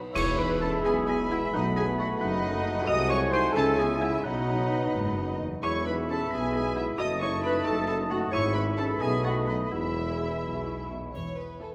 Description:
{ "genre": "cinematic, playful, whimsical film cue", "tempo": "87 BPM (dotted quarters)", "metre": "6/8", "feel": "straight", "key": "E major", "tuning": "A4 = 440 Hz", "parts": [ { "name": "muted chamber violin section", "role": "melody", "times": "0.0-11.7 s", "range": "D#5 to D#6", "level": "-41 LUFS", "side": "equal", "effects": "none" }, { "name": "muted chamber viola section", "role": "accompaniment", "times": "0.0-11.7 s", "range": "B3 to D#5", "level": "-34 LUFS", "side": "equal", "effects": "none" }, { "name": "concert harp", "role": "arpeggios", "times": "0.0-11.7 s", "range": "E2 to B5", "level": "-40 LUFS", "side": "equal", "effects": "none" }, { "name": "clear oboe", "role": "second line", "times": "0.1-10.9 s", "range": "D#5 to F#5", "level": "-40 LUFS", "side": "equal", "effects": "none" }, { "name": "muted chamber double bass section", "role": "bass", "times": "0.1-11.7 s", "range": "E1 to C#2", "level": "-39 LUFS", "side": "equal", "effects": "none" }, { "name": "folk marimba with hard mallets", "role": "melody", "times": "0.2-10.9 s", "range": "F#3 to F#4", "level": "-36 LUFS", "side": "equal", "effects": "none" }, { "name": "muted chamber violin section", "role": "second line", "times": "0.2-11.7 s", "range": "A4 to D#6", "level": "-42 LUFS", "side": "equal", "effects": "none" }, { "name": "silver concert flute", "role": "second line", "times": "0.2-10.9 s", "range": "G#5 to B5", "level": "-40 LUFS", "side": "equal", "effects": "none" }, { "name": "warm clarinet", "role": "second line", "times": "0.2-10.9 s", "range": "D#4 to D#5", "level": "-38 LUFS", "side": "equal", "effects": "none" }, { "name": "dark bassoon", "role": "accompaniment", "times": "0.2-10.9 s", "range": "F#3 to A3", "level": "-38 LUFS", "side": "equal", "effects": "none" }, { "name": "warm French horn section", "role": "sustained chords", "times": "0.2-10.9 s", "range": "F#3 to F#4", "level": "-41 LUFS", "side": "equal", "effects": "none" }, { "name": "mellow tuba", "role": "bass", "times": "0.2-11.0 s", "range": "E1 to C#2", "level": "-38 LUFS", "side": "equal", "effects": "none" }, { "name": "muted chamber cello section", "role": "bass", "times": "0.2-11.7 s", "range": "E2 to C#3", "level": "-39 LUFS", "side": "equal", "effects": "none" }, { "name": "clash cymbals, concert bass drum and triangle", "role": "percussion", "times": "0.2-1.0, 11.2-11.7 s", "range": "none", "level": "-40 LUFS", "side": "equal", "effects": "none" } ], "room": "moderate scoring stage reverb, RT60 1.8 s", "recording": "none", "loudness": "-28 LUFS", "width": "mono", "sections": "0.2-11.2 A section", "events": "band accent 0.2-0.6", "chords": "0.2 E; 1.5 B7; 2.9 G#7/B#; 3.6 C#m; 4.2 B; 5.6 E; 7.0 D#dim/F#; 8.3 E/G#; 9.0 B7; 9.7 E", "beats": "| 0.16 0.85 | 1.54 2.21 | 2.88 3.56 | 4.24 4.93 | 5.63 6.32 | 6.99 7.66 | 8.33 9.01 | 9.72 10.44 | 11.15" }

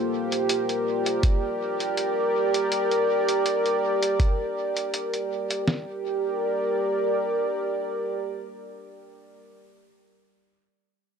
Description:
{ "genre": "ambient dub", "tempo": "81 BPM", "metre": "4/4", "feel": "swing 54% on 16ths", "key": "G minor", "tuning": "A4 = 440 Hz", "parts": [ { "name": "warm analog pad", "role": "sustained chords", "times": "0.0-9.4 s", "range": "Bb3 to D5", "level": "-24 LUFS", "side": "right 1 dB", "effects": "chorus" }, { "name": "electronic hi-hat", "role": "drums", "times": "0.3-5.6 s", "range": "none", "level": "-31 LUFS", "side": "equal", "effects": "dub echo" }, { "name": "lo-fi sampler-style drum kit", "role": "drums", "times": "1.2-5.9 s", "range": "kick drum, snare drum", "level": "-22 LUFS", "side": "equal", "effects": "none" } ], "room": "moderate lush hall reverb, RT60 2.2 s", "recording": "none", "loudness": "-23 LUFS", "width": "side -6 dB against mid", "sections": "0.0-5.7 A section; 5.7-8.6 B section", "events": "none", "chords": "0.0 Gm", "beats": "0.49 1.23 1.97 | 2.71 3.46 4.20 4.94 | 5.68 6.42 7.16 7.90" }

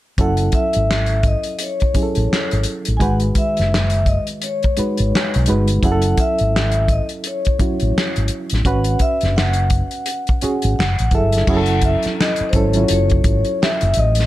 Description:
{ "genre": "R&B, neo-soul", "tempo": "85 BPM", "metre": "4/4", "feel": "swing 60% on 16ths", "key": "F# dorian", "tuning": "A4 = 440 Hz", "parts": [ { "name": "vibraphone with soft mallets", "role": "melody", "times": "0.2-14.3 s", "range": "B#4 to G#5", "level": "-22 LUFS", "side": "left 2 dB", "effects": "none" }, { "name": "reed electric piano", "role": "accompaniment", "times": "0.2-14.3 s", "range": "D#3 to B4", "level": "-22 LUFS", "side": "right 2 dB", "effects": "fast tremolo" }, { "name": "mellow fretless electric bass", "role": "bass", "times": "0.2-14.3 s", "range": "F#1 to B1", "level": "-18 LUFS", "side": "equal", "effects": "none" }, { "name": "warm soul drum kit", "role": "drums", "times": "0.2-14.3 s", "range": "crash cymbal, handclaps, hi-hat, kick drum, snare drum", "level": "-20 LUFS", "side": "equal", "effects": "none" } ], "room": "light reverb", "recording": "dark, warm production", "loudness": "-15 LUFS", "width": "side -15 dB against mid", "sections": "0.2-11.5 A section; 11.5-14.3 B section", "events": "none", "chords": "0.2 F#m7; 3.0 G#m7; 5.8 F#m7; 8.7 C#7sus4; 10.8 F#m9; 11.5 F#m7", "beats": "| 0.18 0.89 1.59 2.30 | 3.00 3.71 4.42 5.12 | 5.83 6.53 7.24 7.95 | 8.65 9.36 10.06 10.77 | 11.47 12.18 12.89 13.59" }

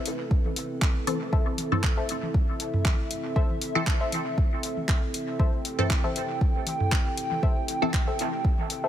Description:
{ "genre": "dub techno", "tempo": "118 BPM", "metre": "4/4", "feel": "swing 54% on 16ths", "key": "A minor", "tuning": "A4 = 439 Hz", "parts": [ { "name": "dark analog pad", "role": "sustained chords", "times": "0.0-8.9 s", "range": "C4 to G5", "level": "-32 LUFS", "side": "right 1 dB", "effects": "chorus, sidechain pumping" }, { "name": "filtered dub chord stab", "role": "riff", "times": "0.0-8.9 s", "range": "A4 to E5", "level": "-35 LUFS", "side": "left 3 dB", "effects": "chorus, sidechain pumping, dub echo" }, { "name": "filtered dub chord stab", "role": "stabs", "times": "0.0-8.9 s", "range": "E3 to A4", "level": "-31 LUFS", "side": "left 1 dB", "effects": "phaser, sidechain pumping, dub echo" }, { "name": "deep house drum kit", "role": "drums", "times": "0.1-8.8 s", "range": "handclaps, hi-hat", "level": "-33 LUFS", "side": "equal", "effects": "overdrive, dub echo" }, { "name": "electronic kick drum", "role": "drums", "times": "0.3-8.6 s", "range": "none", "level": "-24 LUFS", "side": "equal", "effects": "overdrive" }, { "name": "electronic toms", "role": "percussion", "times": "0.4-8.7 s", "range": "none", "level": "-33 LUFS", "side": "right 1 dB", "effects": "sidechain pumping on toms" } ], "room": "light reverb, digital ambience", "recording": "none", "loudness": "-24 LUFS", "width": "side -11 dB against mid", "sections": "0.0-8.9 A section", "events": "none", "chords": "0.0 Am", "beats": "0.31 0.82 | 1.33 1.83 2.34 2.85 | 3.36 3.87 4.38 4.89 | 5.39 5.90 6.41 6.92 | 7.43 7.94 8.45" }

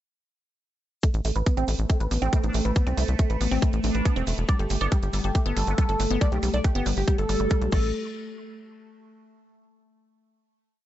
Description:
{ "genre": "psychedelic trance", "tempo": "139 BPM", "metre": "4/4", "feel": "straight", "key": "A minor", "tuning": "A4 = 439 Hz", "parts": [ { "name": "evolving wavetable pad", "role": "sustained chords", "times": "1.7-7.7 s", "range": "A3", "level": "-35 LUFS", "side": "equal", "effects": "phaser, built-in reverb, sidechain pumping" }, { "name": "woody wave-folded pluck", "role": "riff", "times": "1.0-7.9 s", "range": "G3 to B4", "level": "-31 LUFS", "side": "moving between left 3 dB and right 5 dB", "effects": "chorus, auto-pan, sidechain pumping, ping-pong delay" }, { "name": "drum and bass drum kit", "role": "drums", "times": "1.0-7.8 s", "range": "crash cymbal, hi-hat", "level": "-37 LUFS", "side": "right 5 dB", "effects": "overdrive" }, { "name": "electronic kick drum", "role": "drums", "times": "1.0-7.8 s", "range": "none", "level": "-22 LUFS", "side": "equal", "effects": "overdrive" }, { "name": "egg shaker", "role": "percussion", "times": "1.0-7.9 s", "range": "none", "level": "-47 LUFS", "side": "left 5 dB", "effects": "none" }, { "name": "tight sequencer bass", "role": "bass", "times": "1.1-7.9 s", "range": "E1 to C2", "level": "-26 LUFS", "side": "equal", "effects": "none" }, { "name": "vowel-sweep wobble bass", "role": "second line", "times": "2.2-6.4 s", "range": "G3 to D4", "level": "-39 LUFS", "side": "right 2 dB", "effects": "wide subtle chorus, vintage 12-bit sampler grit, sidechain pumping, high-pass filter, digital delay" }, { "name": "wide unison lead", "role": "melody", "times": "4.5-7.9 s", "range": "G4 to D5", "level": "-30 LUFS", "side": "equal", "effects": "phaser, sidechain pumping, ping-pong delay" } ], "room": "little or no reverb", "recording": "nothing above 7.9 kHz", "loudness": "-22 LUFS", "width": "side -13 dB against mid", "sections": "1.0-7.9 groove; 7.9-9.7 final hit", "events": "none", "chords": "1.0 A5; 4.5 Gadd9; 7.7 N.C.", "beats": "| 1.03 1.47 1.90 2.33 | 2.76 3.19 3.62 4.05 | 4.49 4.92 5.35 5.78 | 6.21 6.64 7.08 7.51" }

